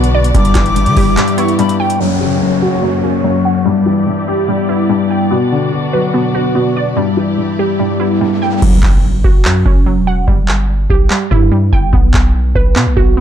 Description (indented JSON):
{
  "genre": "hip hop, trap",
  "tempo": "145 BPM",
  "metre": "4/4",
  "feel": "half-time",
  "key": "unclear",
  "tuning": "A4 = 440 Hz",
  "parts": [
    { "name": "dark concert grand piano", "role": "accompaniment", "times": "0.0-8.6 s", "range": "F#2 to B3", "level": "-15 LUFS", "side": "left 4 dB", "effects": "low-pass filter" },
    { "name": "rich studio string section", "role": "sustained chords", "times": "0.0-8.6 s", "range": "A#3 to D5", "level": "-22 LUFS", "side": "left 1 dB", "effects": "low-pass filter" },
    { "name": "glassy wavetable pluck", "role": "arpeggios", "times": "0.0-13.2 s", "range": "F#3 to G5", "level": "-16 LUFS", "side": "right 2 dB", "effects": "chorus, low-pass filter, digital delay" },
    { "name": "long sustained 808-style bass", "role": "bass", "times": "0.0-1.2, 8.6-13.2 s", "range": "E1 to D3", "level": "-14 LUFS", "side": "equal", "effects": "none" },
    { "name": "booming analog drum machine", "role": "drums", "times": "0.0-2.0, 8.6-13.2 s", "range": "crash cymbal, handclaps, hi-hat, kick drum", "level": "-13 LUFS", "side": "equal", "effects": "none" },
    { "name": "breathy mellow silver concert flute", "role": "second line", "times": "0.3-2.0 s", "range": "G5 to D6", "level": "-20 LUFS", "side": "left 2 dB", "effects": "digital delay" },
    { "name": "downlifter, riser and impact", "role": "sound effects", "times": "2.0-10.3 s", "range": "none", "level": "-24 LUFS", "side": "equal", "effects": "none" }
  ],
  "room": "little or no reverb",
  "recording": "dark, warm production",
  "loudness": "-10 LUFS",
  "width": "side -9 dB against mid",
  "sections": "0.0-2.0 A section; 2.0-8.6 B section; 8.6-13.2 C section",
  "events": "kick muted 1.2-2.0; filter sweep 2.0-8.6; riser 7.9-8.6; hi-hats muted 8.6-13.2; impact 8.6-10.3",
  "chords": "0.3 G6; 2.0 F#; 3.7 G6; 5.3 Bm; 7.0 G6; 8.6 F#5; 10.3 G6; 11.9 B5"
}